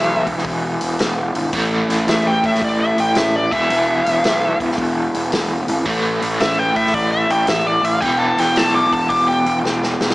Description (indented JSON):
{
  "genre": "blues rock power trio and southern rock",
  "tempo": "111 BPM",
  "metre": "4/4",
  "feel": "swing 67% on 8ths",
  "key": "unclear",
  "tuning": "A4 = 445 Hz",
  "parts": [
    { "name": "smooth overdriven lead guitar", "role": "melody", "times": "0.0-9.6 s", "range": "D5 to D6", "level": "-18 LUFS", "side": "equal", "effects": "none" },
    { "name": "overdriven electric guitar", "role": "riff", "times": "0.0-10.1 s", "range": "E2 to A3", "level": "-21 LUFS", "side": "equal", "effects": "tremolo, slapback echo" },
    { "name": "fuzz picked electric bass", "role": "bass", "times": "0.0-10.1 s", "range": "E1 to A2", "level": "-22 LUFS", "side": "equal", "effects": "overdrive" },
    { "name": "vintage drum kit", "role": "drums", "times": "0.3-10.1 s", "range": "hi-hat, kick drum, snare drum", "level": "-24 LUFS", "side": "equal", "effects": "none" }
  ],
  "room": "wet lush hall reverb, RT60 1.7 s, studio ambience",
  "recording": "big arena sound, small speaker sound",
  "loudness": "-15 LUFS",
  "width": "side -20 dB against mid",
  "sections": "0.0-10.1 A section",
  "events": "drum fill 9.6-10.1",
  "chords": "0.0 E5; 1.5 A5; 3.4 E5; 5.9 A5; 8.0 E5"
}